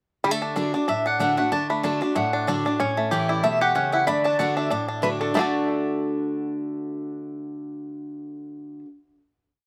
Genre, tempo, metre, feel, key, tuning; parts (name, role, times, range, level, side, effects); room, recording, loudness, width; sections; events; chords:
bluegrass; 188 BPM; 4/4; swing 56% on 8ths; D major; A4 = 440 Hz
lap resonator guitar; second line; 0.2-8.8 s; A4 to D5; -32 LUFS; equal; slapback echo
picked steel-string acoustic guitar; accompaniment; 0.2-8.9 s; A2 to F#4; -30 LUFS; equal
bluegrass banjo; arpeggios; 0.2-8.8 s; G3 to A4; -28 LUFS; equal
mandolin; melody; 0.7-8.8 s; D5 to B5; -28 LUFS; equal; slapback echo
little or no reverb; recorded outdoors, with no room sound; -24 LUFS; mono
0.2-5.4 A section; 5.4-7.9 final chord
0.2 D; 2.8 A; 4.1 D